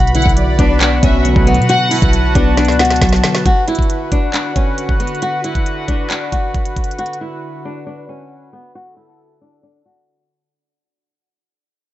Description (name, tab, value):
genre	hip hop, trap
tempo	136 BPM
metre	4/4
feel	half-time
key	B minor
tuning	A4 = 439 Hz
part	flamenco guitar	melody	0.0-10.5 s	B3 to F#4	-19 LUFS	left 1 dB	low-pass filter
part	warbly lo-fi synth keys	accompaniment	0.0-3.5 s	B2 to F#4	-19 LUFS	left 2 dB	chorus
part	sweeping resonant pad	sustained chords	0.0-10.5 s	D3 to B5	-23 LUFS	right 1 dB	chorus, low-pass filter
part	warm 808-style bass	bass	0.0-3.2 s	B1 to B2	-15 LUFS	equal	none
part	trap drum kit	drums	0.0-7.2 s	handclaps, hi-hat, kick drum, snare drum	-16 LUFS	equal	none
part	warm symphonic violin section	second line	0.2-2.1 s	D5 to F#5	-22 LUFS	equal	tape echo
part	mellow synth brass	stabs	1.2-1.6 s	D2 to F#3	-20 LUFS	right 1 dB	chorus
room	digital ambience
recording	nothing above 7.9 kHz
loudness	-12 LUFS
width	side -14 dB against mid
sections	0.0-3.5 A section; 3.5-10.5 B section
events	drum fill 2.6-3.5; fade-out 3.5-10.5; filter sweep 3.5-10.5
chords	0.0 Bm